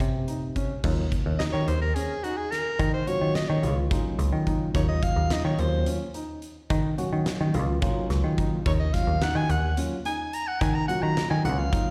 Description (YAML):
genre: progressive instrumental, band music in an uneven meter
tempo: 215 BPM (eighths)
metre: 7/8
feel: straight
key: Eb dorian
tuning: A4 = 440 Hz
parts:
  - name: picked electric bass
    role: bass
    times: 0.0-11.7 s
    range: Db2 to Eb3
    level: -27 LUFS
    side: equal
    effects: none
  - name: huge arena drum kit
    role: drums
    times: 0.0-11.9 s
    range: crash cymbal, hi-hat, kick drum, snare drum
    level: -32 LUFS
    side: equal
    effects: none
  - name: dark grand piano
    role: arpeggios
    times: 0.3-11.9 s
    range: Db4 to Gb4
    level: -38 LUFS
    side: equal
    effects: slapback echo
  - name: tine electric piano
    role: accompaniment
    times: 0.8-11.9 s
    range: Gb3 to Gb4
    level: -35 LUFS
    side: equal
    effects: none
  - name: breathy soprano saxophone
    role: melody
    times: 1.4-11.9 s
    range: Gb4 to Bb5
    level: -32 LUFS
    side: equal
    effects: slapback echo
room: little or no reverb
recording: live gig heard through the venue's PA, recital hall reverb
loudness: -26 LUFS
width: mono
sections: 0.8-11.9 A section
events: soprano saxophone solo 0.8-11.9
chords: 0.0 Eb7(no3); 0.8 Ebm7